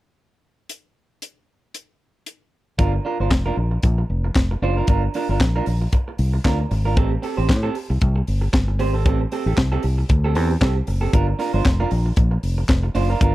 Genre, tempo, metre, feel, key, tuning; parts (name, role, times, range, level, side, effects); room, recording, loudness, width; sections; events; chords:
disco; 115 BPM; 4/4; swing 56% on 16ths; G minor; A4 = 440 Hz
tight funk drum kit; drums; 0.7-13.3 s; handclaps, hi-hat, kick drum, snare drum; -19 LUFS; equal
electric guitar at the edge of break-up; accompaniment; 2.8-13.3 s; C4 to C5; -25 LUFS; right 4 dB; spring reverb
fingered electric bass; bass; 2.8-13.3 s; F1 to A2; -20 LUFS; equal
little or no reverb; dry, close 1970s-style studio recording; -18 LUFS; side -16 dB against mid
0.7-2.8 A section; 2.8-13.3 B section
0.7 N.C.; 2.8 Gm7; 7.0 Am7; 11.1 Gm7